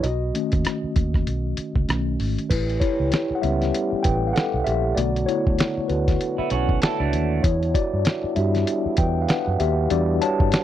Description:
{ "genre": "lush 1970s-style soul", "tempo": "97 BPM", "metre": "4/4", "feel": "swing 58% on 16ths", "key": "E dorian", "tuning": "A4 = 439 Hz", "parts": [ { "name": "mellow tine electric piano", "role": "accompaniment", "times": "0.0-10.6 s", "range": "D3 to A5", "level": "-24 LUFS", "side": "left 2 dB", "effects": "medium stereo tremolo" }, { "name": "vintage muted fingered electric bass", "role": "bass", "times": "0.0-10.5 s", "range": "G#1 to G2", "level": "-24 LUFS", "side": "right 1 dB", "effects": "none" }, { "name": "lo-fi sampler-style drum kit", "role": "drums", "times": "0.0-10.6 s", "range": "crash cymbal, hi-hat, kick drum, rim click, snare drum", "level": "-23 LUFS", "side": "equal", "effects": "none" }, { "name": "mellow French horn section", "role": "sustained chords", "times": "2.5-10.6 s", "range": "B2 to G4", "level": "-31 LUFS", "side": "right 2 dB", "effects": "none" }, { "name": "electric guitar through a small old amp", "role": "riff", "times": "6.4-7.4 s", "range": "A3 to A4", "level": "-25 LUFS", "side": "right 8 dB", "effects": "none" } ], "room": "little or no reverb", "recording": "dry, close 1970s-style studio recording", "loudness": "-20 LUFS", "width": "side -12 dB against mid", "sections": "0.0-2.5 A section; 2.5-10.6 B section", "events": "tine electric piano solo 0.0-2.5, 2.5-10.6", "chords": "0.0 B7; 2.5 A7; 5.0 Bm7; 7.4 Em7" }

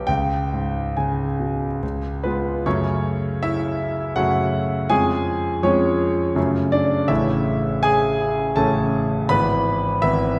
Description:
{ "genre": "classical, romantic character piece for solo piano", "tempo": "67-83 BPM", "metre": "3/4", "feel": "rubato", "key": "F# minor", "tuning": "A4 = 439 Hz", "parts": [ { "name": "warm concert grand piano", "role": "solo", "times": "0.0-10.4 s", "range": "G#1 to B5", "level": "-21 LUFS", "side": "equal", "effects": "none" } ], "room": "wet scoring stage reverb, RT60 1.7 s", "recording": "none", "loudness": "-21 LUFS", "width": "mono", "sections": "0.0-2.7 A section; 2.7-10.4 B section", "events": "none", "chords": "0.1 C#5; 1.8 C#; 2.7 F#m; 4.9 C#/E#; 6.4 F#m; 7.1 A; 9.3 E/G#" }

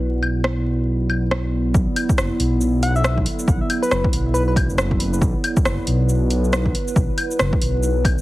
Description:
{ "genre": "future garage", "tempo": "138 BPM", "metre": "4/4", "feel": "swing 61% on 16ths", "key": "B minor", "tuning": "A4 = 440 Hz", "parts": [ { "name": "warbly tape-like pad", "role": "sustained chords", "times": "0.0-8.2 s", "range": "F#3 to D5", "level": "-25 LUFS", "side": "right 1 dB", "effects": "chorus, built-in reverb, sidechain pumping" }, { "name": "swelling detuned saw bass", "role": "bass", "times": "0.0-8.2 s", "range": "F#1 to B1", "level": "-20 LUFS", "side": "equal", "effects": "sidechain pumping" }, { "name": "wind-like tuned noise texture", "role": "texture", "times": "0.0-1.8 s", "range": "F#4 to F#5", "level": "-44 LUFS", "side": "equal", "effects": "none" }, { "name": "deep house drum kit", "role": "drums", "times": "0.2-8.2 s", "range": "claves, hi-hat, rim click, shaker", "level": "-24 LUFS", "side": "equal", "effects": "overdrive, small room ambience" }, { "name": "electronic kick drum", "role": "drums", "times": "1.7-8.2 s", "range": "none", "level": "-20 LUFS", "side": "equal", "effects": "overdrive, small room ambience" }, { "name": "soft struck synth lead", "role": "melody", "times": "2.8-4.5 s", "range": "B4 to F#5", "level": "-26 LUFS", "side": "left 1 dB", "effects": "chorus, cassette tape, tape echo" } ], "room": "light reverb, digital ambience", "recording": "heavily compressed radio sound, multiband compression, vinyl crackle", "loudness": "-17 LUFS", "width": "side -17 dB against mid", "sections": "0.0-1.7 A section; 1.7-8.2 B section", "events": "none", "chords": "0.0 Bm; 1.7 Bm7" }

